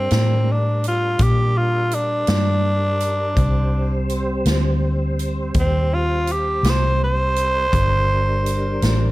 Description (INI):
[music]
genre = slow blues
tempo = 55 BPM (dotted quarters)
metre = 12/8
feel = straight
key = G minor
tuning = A4 = 440 Hz
[part]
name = growling tenor saxophone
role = melody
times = 0.0-9.1 s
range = C4 to C5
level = -21 LUFS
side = equal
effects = none
[part]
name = tonewheel organ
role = sustained chords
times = 0.0-9.1 s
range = G3 to C5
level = -28 LUFS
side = equal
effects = chorus vibrato, slow rotary speaker
[part]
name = vintage muted fingered electric bass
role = bass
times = 0.0-9.1 s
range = G1 to Bb2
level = -20 LUFS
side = equal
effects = none
[part]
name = swinging big-band drum kit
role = drums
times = 0.1-9.0 s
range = hi-hat, kick drum, snare drum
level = -24 LUFS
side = right 1 dB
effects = none
[sound]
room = studio reverb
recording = none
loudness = -17 LUFS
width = side -18 dB against mid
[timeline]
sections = 0.0-9.1 A section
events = none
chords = 0.0 Gm; 3.4 Cm; 7.7 Gm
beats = 0.11 1.20 2.29 | 3.37 4.46 5.55 6.64 | 7.72 8.81